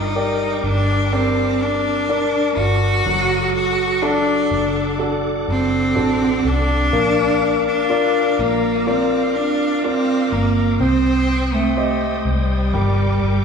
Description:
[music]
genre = pop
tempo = 62 BPM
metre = 4/4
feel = straight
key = G minor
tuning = A4 = 438 Hz
[part]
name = clear cello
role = melody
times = 0.0-13.4 s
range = G3 to F#4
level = -19 LUFS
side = right 1 dB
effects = none
[part]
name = clear concert grand piano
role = accompaniment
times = 0.0-13.4 s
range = F#3 to Eb5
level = -21 LUFS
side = left 2 dB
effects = none
[part]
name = bright tonewheel organ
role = sustained chords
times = 0.0-13.4 s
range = A4 to Eb6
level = -28 LUFS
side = left 3 dB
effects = chorus vibrato, fast rotary speaker
[part]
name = vintage muted fingered electric bass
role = bass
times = 0.0-13.4 s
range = F#1 to C2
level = -22 LUFS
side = equal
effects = none
[sound]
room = wet recital hall reverb, RT60 1.7 s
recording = recorded in a church or concert hall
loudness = -16 LUFS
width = side -6 dB against mid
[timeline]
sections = 0.0-13.4 A section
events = none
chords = 0.0 Gm; 3.1 D/F#; 6.9 Bb; 10.8 Cm; 12.7 Gm

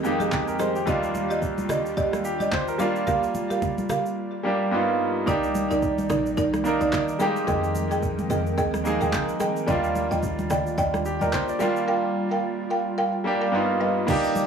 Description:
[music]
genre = amapiano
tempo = 109 BPM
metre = 4/4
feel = swing 58% on 16ths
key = unclear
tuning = A4 = 441 Hz
[part]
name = bright concert grand piano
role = accompaniment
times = 0.0-14.5 s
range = Eb2 to D5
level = -26 LUFS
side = right 1 dB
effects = none
[part]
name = airy breathy pad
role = sustained chords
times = 0.0-14.5 s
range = C3 to G5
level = -31 LUFS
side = equal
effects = chorus, sidechain pumping
[part]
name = smooth R&B drum kit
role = drums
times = 0.0-14.5 s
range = crash cymbal, handclaps, kick drum, rim click, shaker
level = -32 LUFS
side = equal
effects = overdrive
[part]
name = buzzing marimba with medium mallets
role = stabs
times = 0.2-13.9 s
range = G3 to G5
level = -27 LUFS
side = right 1 dB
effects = tape echo
[part]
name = congas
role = percussion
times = 0.2-14.5 s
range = none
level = -32 LUFS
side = right 2 dB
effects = none
[part]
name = deep log drum bass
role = bass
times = 5.3-11.3 s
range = Bb1 to F2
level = -31 LUFS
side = right 1 dB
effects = none
[sound]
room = light reverb, small room reverb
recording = dry, gritty hardware recording, transformer saturation, small room ambience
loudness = -22 LUFS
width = side -6 dB against mid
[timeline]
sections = 0.0-14.1 A section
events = drums muted 4.2-5.3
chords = 0.0 Fm11; 0.9 Ebmaj7; 2.8 Gm7; 4.7 G7alt; 5.3 Cm9; 7.2 Fm11; 9.7 Ebmaj7; 11.6 Gm7; 13.5 G7alt

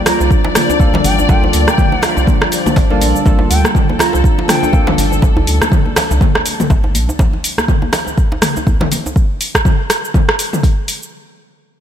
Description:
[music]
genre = afro house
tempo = 122 BPM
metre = 4/4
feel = swing 58% on 16ths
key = G minor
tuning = A4 = 440 Hz
[part]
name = dark studio string section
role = sustained chords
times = 0.0-7.2 s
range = G3 to D5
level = -22 LUFS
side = left 4 dB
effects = sidechain pumping
[part]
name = deep mellow chord stab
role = stabs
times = 0.0-5.2 s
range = Bb3 to A4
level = -23 LUFS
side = right 2 dB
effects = chorus, sidechain pumping, analog delay
[part]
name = concert flute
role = melody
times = 0.1-4.9 s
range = G5 to Bb5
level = -23 LUFS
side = left 1 dB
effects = analog delay
[part]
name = handpan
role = arpeggios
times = 0.1-5.2 s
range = D3 to F4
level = -20 LUFS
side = equal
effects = sidechain pumping, analog delay
[part]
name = deep house drum kit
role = drums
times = 0.1-11.1 s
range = cabasa, hi-hat, rim click, toms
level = -16 LUFS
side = equal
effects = none
[part]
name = congas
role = percussion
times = 0.1-9.0 s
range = none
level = -24 LUFS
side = left 2 dB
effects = none
[part]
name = djembe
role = percussion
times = 0.1-9.1 s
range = none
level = -24 LUFS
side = right 1 dB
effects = none
[part]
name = warm sub bass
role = bass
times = 0.2-7.1 s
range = G1 to D2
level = -16 LUFS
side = equal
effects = sidechain pumping
[part]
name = electronic kick drum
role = drums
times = 0.3-10.7 s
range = none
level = -13 LUFS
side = equal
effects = none
[sound]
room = light reverb, small room ambience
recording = none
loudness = -11 LUFS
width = side -9 dB against mid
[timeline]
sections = 0.0-11.1 A section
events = drop 0.0-11.1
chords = 0.0 Gm9

